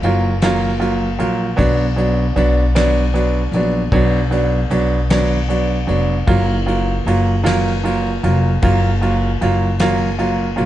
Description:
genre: six-eight pop ballad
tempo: 51 BPM (dotted quarters)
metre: 6/8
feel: straight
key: F# major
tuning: A4 = 440 Hz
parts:
  - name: warm grand piano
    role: accompaniment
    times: 0.0-10.7 s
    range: F#3 to E#4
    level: -17 LUFS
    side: right 2 dB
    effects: none
  - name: upright bass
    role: bass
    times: 0.0-10.7 s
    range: E#1 to B1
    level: -18 LUFS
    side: left 1 dB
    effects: none
  - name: soft brush drum kit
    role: drums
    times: 0.0-10.7 s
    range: kick drum, ride cymbal, snare drum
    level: -24 LUFS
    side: left 1 dB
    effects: none
room: light reverb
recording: nothing above 10.5 kHz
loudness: -14 LUFS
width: side -13 dB against mid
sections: 0.0-10.7 A section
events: none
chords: 0.0 F#maj7; 1.6 Bm; 6.3 F#maj7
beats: 0.42 | 1.59 2.76 | 3.93 5.10 | 6.28 7.46 | 8.63 9.80

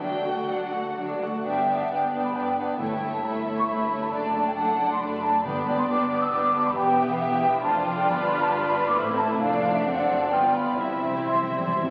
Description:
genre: quick classical-period movement for symphony orchestra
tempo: 135 BPM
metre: 3/4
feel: rubato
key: G major, C major from 6.8 s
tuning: A4 = 440 Hz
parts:
  - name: rich chamber violin section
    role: melody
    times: 0.0-11.9 s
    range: B4 to G5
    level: -38 LUFS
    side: equal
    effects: none
  - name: warm chamber violin section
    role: second line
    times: 0.0-11.9 s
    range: G3 to F#5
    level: -34 LUFS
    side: equal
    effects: none
  - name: rich chamber viola section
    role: accompaniment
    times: 0.0-11.9 s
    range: F#3 to G4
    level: -30 LUFS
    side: equal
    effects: none
  - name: warm chamber cello section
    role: bass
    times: 0.0-11.9 s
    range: D2 to C3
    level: -41 LUFS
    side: equal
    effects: none
  - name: large flute ensemble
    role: second line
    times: 1.4-11.9 s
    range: E5 to E6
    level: -27 LUFS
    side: equal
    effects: none
  - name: warm chamber double bass section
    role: bass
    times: 1.4-11.9 s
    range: E1 to C2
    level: -42 LUFS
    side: equal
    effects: none
  - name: timpani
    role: percussion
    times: 2.8-6.1, 10.8-11.9 s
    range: G2 to C3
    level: -40 LUFS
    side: equal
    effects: none
room: wet scoring stage reverb, RT60 1.8 s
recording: very old 78 rpm record, vinyl crackle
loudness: -25 LUFS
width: mono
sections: 0.0-1.4 A section; 1.4-11.9 B section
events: timpani fill 10.8-11.9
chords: 0.0 D; 1.4 G; 2.8 A7/G; 4.1 D/F#; 5.5 G; 6.8 Em; 7.6 Dm/F; 8.1 G7; 9.0 Am; 9.4 Dm/F; 9.9 D7/F#; 10.3 G7; 10.8 C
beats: | 0.01 0.50 0.98 | 1.45 1.90 2.34 | 2.79 3.23 3.68 | 4.13 4.57 5.01 | 5.45 5.89 6.33 | 6.76 7.21 7.65 | 8.09 8.53 8.98 | 9.42 9.86 10.32 | 10.79 11.27 11.74

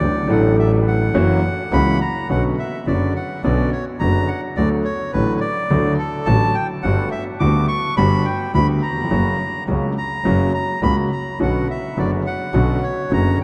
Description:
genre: tango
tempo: 105 BPM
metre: 4/4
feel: rubato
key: B harmonic minor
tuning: A4 = 440 Hz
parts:
  - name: bandoneon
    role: melody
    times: 0.0-13.4 s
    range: A4 to D6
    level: -26 LUFS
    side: equal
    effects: none
  - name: warm concert grand piano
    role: accompaniment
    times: 0.0-13.4 s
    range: F#1 to A4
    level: -22 LUFS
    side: equal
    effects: none
  - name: clear double bass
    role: bass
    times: 0.0-13.4 s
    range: F#1 to D2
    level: -24 LUFS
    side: equal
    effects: none
room: wet cathedral reverb, RT60 6.1 s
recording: in a vast, echoing space, nothing above 10.4 kHz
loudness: -19 LUFS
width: mono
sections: 0.0-2.3 A section; 2.3-13.4 B section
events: none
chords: 0.0 D; 1.1 F#7; 2.3 Bmadd9; 4.6 D; 6.8 Gmaj7; 9.1 F#; 11.4 Bmadd9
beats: | 0.01 0.58 1.15 1.72 | 2.30 2.87 3.44 4.01 | 4.58 5.14 5.71 6.27 | 6.84 7.40 7.97 8.54 | 9.11 9.68 10.25 10.82 | 11.40 11.97 12.54 13.12

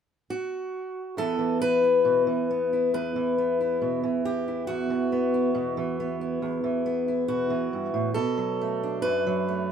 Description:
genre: folk, solo fingerstyle acoustic guitar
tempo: 69 BPM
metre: 4/4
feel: straight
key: unclear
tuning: A4 = 443 Hz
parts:
  - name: fingerpicked steel-string acoustic guitar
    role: solo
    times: 0.3-9.7 s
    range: E2 to B4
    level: -24 LUFS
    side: equal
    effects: none
room: light reverb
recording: band playing live in one room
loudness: -24 LUFS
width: side -8 dB against mid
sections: 0.0-1.2 A section; 1.2-9.7 B section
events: none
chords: 0.0 N.C.; 1.2 Esus2; 8.2 Bm7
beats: 0.28 | 1.16 2.05 2.93 3.81 | 4.68 5.55 6.42 7.29 | 8.16 9.04

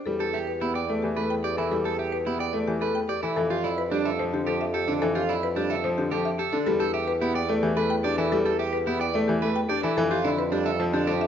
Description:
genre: classical, minimalist pattern music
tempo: 109 BPM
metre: 3/4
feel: straight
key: unclear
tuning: A4 = 440 Hz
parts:
  - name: buzzing marimba with hard mallets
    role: melody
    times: 0.0-11.3 s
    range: G4 to G5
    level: -29 LUFS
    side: left 6 dB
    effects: none
  - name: bright grand piano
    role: accompaniment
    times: 0.1-11.3 s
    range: D3 to D4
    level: -28 LUFS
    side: equal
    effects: none
  - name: mellow bassoon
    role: bass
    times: 0.1-11.3 s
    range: E2 to F2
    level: -31 LUFS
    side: right 1 dB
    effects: none
  - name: electric guitar at the edge of break-up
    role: arpeggios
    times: 0.2-11.3 s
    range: D4 to D5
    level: -29 LUFS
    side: right 7 dB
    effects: none
room: moderate recital hall reverb, RT60 1.4 s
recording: nothing above 7.5 kHz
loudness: -23 LUFS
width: side -8 dB against mid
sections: 0.1-11.3 A section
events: none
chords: 0.1 Em7; 3.4 Dmadd9/F; 6.7 Em7; 10.0 Dmadd9/F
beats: | 0.07 0.61 1.17 | 1.72 2.27 2.82 | 3.37 3.92 4.47 | 5.02 5.57 6.12 | 6.67 7.22 7.77 | 8.32 8.87 9.42 | 9.97 10.52 11.07

